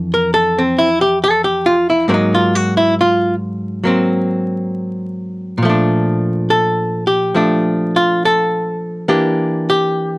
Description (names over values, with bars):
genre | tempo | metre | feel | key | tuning
jazz ballad | 68 BPM | 4/4 | swing 66% on 8ths | unclear | A4 = 440 Hz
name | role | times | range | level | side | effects
archtop guitar, miked and amplified | solo | 0.0-10.2 s | F2 to Bb4 | -13 LUFS | equal | none
room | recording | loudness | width
light reverb | vinyl crackle | -13 LUFS | side -21 dB against mid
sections
0.0-10.2 A section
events
none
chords
0.0 F6; 2.1 Ab9; 5.6 Bbmaj7; 9.1 Em7b5